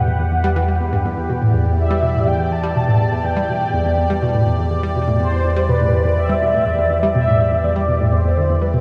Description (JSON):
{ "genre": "ambient, sequencer-driven space music", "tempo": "123 BPM", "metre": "4/4", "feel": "straight", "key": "E minor", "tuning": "A4 = 441 Hz", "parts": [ { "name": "mellow horn-like synth lead", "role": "melody", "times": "0.0-8.8 s", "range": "B4 to A5", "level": "-24 LUFS", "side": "equal", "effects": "ensemble chorus, tape echo" }, { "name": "phased analog pad", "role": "sustained chords", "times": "0.0-8.8 s", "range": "E2 to D5", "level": "-21 LUFS", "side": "equal", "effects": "phaser, chorus" }, { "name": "analog pluck", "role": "riff", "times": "0.0-8.8 s", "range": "E2 to G3", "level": "-22 LUFS", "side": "equal", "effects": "chorus, tape echo" } ], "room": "wet huge ambient reverb, RT60 8.3 s", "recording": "studio reverb", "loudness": "-17 LUFS", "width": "mono", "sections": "0.0-8.8 A section", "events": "none", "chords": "0.0 Em" }